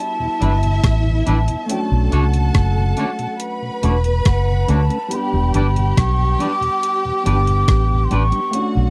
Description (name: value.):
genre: lovers rock reggae.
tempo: 70 BPM.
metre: 4/4.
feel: straight.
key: unclear.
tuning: A4 = 435 Hz.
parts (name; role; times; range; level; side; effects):
breathy hollow bansuri; melody; 0.0-8.7 s; F#5 to D6; -26 LUFS; equal; tape echo.
warm studio string section; second line; 0.0-8.9 s; E4 to B5; -28 LUFS; equal; slapback echo.
warm grand piano; accompaniment; 0.0-8.9 s; F#3 to G4; -29 LUFS; equal; slapback echo.
mellow tonewheel organ; accompaniment; 0.2-8.8 s; E2 to D4; -29 LUFS; equal; chorus vibrato, slow rotary speaker.
twangy electric guitar; stabs; 0.4-8.2 s; G3 to D5; -26 LUFS; equal; subtle chorus.
vintage muted fingered electric bass; bass; 0.4-8.9 s; E1 to D2; -19 LUFS; equal; none.
crisp 8-bit digital drum machine; drums; 0.4-8.7 s; hi-hat, kick drum, rim click; -21 LUFS; equal; overdrive.
room: little or no reverb.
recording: dry, close 1970s-style studio recording.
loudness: -18 LUFS.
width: mono.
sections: 0.0-8.9 A section.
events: none.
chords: 0.0 Em7; 1.7 Bm9; 5.1 Em7.